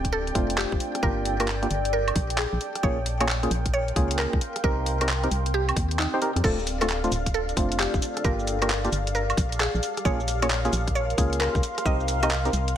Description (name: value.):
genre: UK garage, two-step garage.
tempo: 133 BPM.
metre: 4/4.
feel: swing 65% on 16ths.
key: unclear.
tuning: A4 = 441 Hz.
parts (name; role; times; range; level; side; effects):
warm analog pad; sustained chords; 0.0-12.8 s; F5 to G5; -35 LUFS; left 1 dB; chorus, sidechain pumping.
organ-like FM bass; bass; 0.0-12.8 s; D1 to F2; -28 LUFS; equal; sidechain pumping.
electronic kick drum; drums; 0.0-12.0 s; none; -26 LUFS; equal; none.
garage drum kit; drums; 0.0-12.7 s; crash cymbal, handclaps, hi-hat, rim click, shaker, woodblock; -29 LUFS; right 1 dB; none.
granular cloud pad; texture; 0.0-12.8 s; C4 to C6; -33 LUFS; equal; built-in reverb, sidechain pumping.
mallet-like synth pluck; melody; 0.1-12.4 s; Eb4 to Eb5; -30 LUFS; equal; chorus, ping-pong delay.
percussive organ stab; stabs; 0.3-12.5 s; A3 to C5; -30 LUFS; equal; chorus, ping-pong delay.
room: light reverb.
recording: none.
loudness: -22 LUFS.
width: side -10 dB against mid.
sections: 0.0-12.8 A section.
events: none.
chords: 0.0 Dm7; 1.0 Gm7; 2.6 Bbm7; 4.4 Cm7; 6.4 Dm7; 8.2 Gm7; 9.8 Bbm7; 11.6 Cm7.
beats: 0.13 0.58 | 1.03 1.48 1.93 2.38 | 2.83 3.28 3.73 4.19 | 4.64 5.09 5.54 5.99 | 6.44 6.89 7.34 7.80 | 8.25 8.70 9.15 9.60 | 10.05 10.50 10.95 11.40 | 11.86 12.31 12.76.